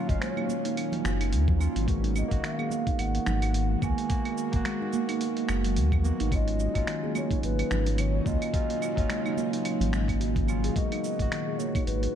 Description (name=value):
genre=organic downtempo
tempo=108 BPM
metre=4/4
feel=swing 57% on 16ths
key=G# dorian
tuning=A4 = 440 Hz
part: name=mellow hollow bansuri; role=melody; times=0.0-12.2 s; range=B4 to G#5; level=-36 LUFS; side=left 2 dB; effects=tape echo
part: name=overdriven tine electric piano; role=accompaniment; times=0.0-12.2 s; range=A#2 to E#5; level=-36 LUFS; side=right 5 dB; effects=sidechain pumping, digital delay
part: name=bowed-like drone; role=sustained chords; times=0.0-12.2 s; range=A#2 to F#4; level=-36 LUFS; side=equal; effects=built-in reverb, sidechain pumping
part: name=warm sub bass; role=bass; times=0.1-12.1 s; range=F#1 to D#2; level=-27 LUFS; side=equal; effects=tube saturation, sidechain pumping
part: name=dusty soul sampler-style drum kit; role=drums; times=0.1-12.1 s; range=cabasa, claves, finger snaps, hi-hat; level=-37 LUFS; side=right 2 dB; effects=small room ambience
part: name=electronic kick drum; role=drums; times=0.1-11.8 s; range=none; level=-29 LUFS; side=equal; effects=small room ambience
part: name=congas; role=percussion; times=0.1-12.1 s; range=none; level=-38 LUFS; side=right 5 dB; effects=none
part: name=steel tongue drum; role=arpeggios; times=0.2-11.9 s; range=D#3 to G#4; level=-32 LUFS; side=right 2 dB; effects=digital delay
room=light reverb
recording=dark, warm production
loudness=-25 LUFS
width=side -9 dB against mid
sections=0.0-10.8 A section; 10.8-12.2 A section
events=none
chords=0.0 D#m7/G#; 1.9 G#m7; 6.3 D#m7/G#; 10.8 G#m7